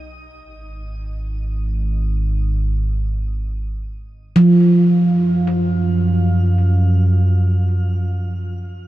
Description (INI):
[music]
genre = ambient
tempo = free time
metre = none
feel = none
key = unclear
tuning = A4 = 440 Hz
[part]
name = handpan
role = arpeggios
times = 0.0-8.9 s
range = F3 to Eb4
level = -16 LUFS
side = right 1 dB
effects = tape echo
[part]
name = deep rumbling drone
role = bass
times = 0.7-8.9 s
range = Ab1 to Gb2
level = -18 LUFS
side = equal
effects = built-in reverb
[sound]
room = light reverb, studio ambience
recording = none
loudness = -15 LUFS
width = side -15 dB against mid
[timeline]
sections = 0.0-4.4 A section; 4.4-8.9 B section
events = none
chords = 0.0 Ab5; 4.4 N.C.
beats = free time